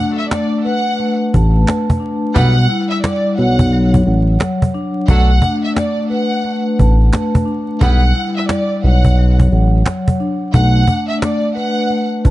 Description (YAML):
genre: hip hop, boom-bap hip-hop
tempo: 88 BPM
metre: 4/4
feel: swing 62% on 16ths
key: B minor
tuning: A4 = 440 Hz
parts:
  - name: rich studio violin section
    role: melody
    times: 0.0-12.1 s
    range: D5 to F#5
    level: -21 LUFS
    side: right 1 dB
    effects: high-pass filter, low-pass filter
  - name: vibraphone with medium mallets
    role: accompaniment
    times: 0.0-12.3 s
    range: F#3 to A5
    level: -18 LUFS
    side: left 1 dB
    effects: cassette tape, high-pass filter, low-pass filter
  - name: cajon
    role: drums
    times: 0.3-12.3 s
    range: none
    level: -17 LUFS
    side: equal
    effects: none
  - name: finger snaps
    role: percussion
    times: 0.3-11.4 s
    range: none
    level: -32 LUFS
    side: right 4 dB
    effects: none
  - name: smooth synth bass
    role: bass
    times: 1.3-12.3 s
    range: A1 to B1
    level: -11 LUFS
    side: equal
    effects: none
  - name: mellow horn section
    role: stabs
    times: 2.3-8.0 s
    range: F#3 to B4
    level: -28 LUFS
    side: right 2 dB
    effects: high-pass filter, low-pass filter, ping-pong delay
room: studio reverb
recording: vinyl crackle, nothing above 10.8 kHz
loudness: -12 LUFS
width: side -16 dB against mid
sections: 0.0-10.5 A section; 10.5-12.3 A section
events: none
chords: 0.0 Bm7; 2.4 Em/B; 3.4 Dmaj7; 5.1 Bm7; 7.8 Em/B; 8.8 Dmaj7; 10.5 Bm7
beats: 0.31 0.99 1.67 | 2.36 3.04 3.72 4.40 | 5.08 5.76 6.45 7.13 | 7.81 8.49 9.17 9.86 | 10.54 11.22 11.90